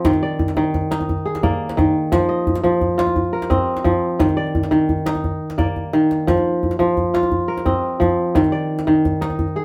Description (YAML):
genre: west african traditional, West African string and xylophone music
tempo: 116 BPM (dotted quarters)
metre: 12/8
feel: straight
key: unclear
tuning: A4 = 441 Hz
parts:
  - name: kora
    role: arpeggios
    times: 0.0-9.6 s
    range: Eb3 to Eb5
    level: -20 LUFS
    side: equal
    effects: none
  - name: djembe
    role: percussion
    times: 0.0-9.6 s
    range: none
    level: -25 LUFS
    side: equal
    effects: none
room: wet studio reverb, RT60 0.6 s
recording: band playing live in one room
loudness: -19 LUFS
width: mono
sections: 0.0-9.6 A section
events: drum fill 5.8-6.3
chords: 0.0 Eb5; 2.1 F5; 4.2 Eb5; 6.3 F5; 8.3 Eb5